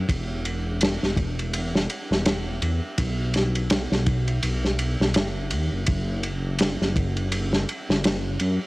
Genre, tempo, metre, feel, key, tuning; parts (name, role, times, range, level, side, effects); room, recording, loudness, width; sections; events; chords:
trip hop; 83 BPM; 4/4; swing 58% on 16ths; A4 = 442 Hz
dark detuned saw bass; bass; 0.0-8.6 s; E1 to F#2; -25 LUFS; equal
vintage drum kit; drums; 0.1-8.6 s; kick drum, ride cymbal, snare drum; -24 LUFS; equal; cassette tape
little or no reverb; home recording on cassette; -22 LUFS; side -21 dB against mid
0.0-8.7 A section